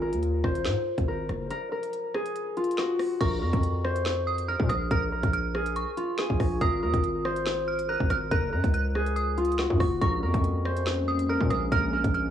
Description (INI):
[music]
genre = hip hop, drill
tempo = 141 BPM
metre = 4/4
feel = half-time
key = Bb minor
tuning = A4 = 440 Hz
[part]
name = concert harp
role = melody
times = 0.0-12.3 s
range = F4 to C5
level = -29 LUFS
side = left 2 dB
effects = cassette tape, tape echo
[part]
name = distorted 808-style bass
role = bass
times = 0.0-12.3 s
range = Gb1 to Bb2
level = -29 LUFS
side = equal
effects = distortion
[part]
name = drill drum kit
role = drums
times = 0.1-12.2 s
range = crash cymbal, finger snaps, hi-hat, kick drum, rim click, snare drum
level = -29 LUFS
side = equal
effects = cassette tape
[part]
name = dark detuned synth bell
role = second line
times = 3.2-12.3 s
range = Db6 to Gb6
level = -31 LUFS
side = right 4 dB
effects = chorus, tremolo, tape echo
[part]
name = hollow soft pad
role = sustained chords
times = 10.0-12.3 s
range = Ab3 to Db4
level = -31 LUFS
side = left 1 dB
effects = chorus
[sound]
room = little or no reverb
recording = home recording on cassette, small room ambience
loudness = -24 LUFS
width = side -10 dB against mid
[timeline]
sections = 0.0-3.2 A section; 3.2-12.3 B section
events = kick muted 1.5-3.2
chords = 0.0 Absus2; 1.5 N.C.; 3.2 Bbm; 6.6 Absus2; 8.3 Gb5; 10.0 Bbm7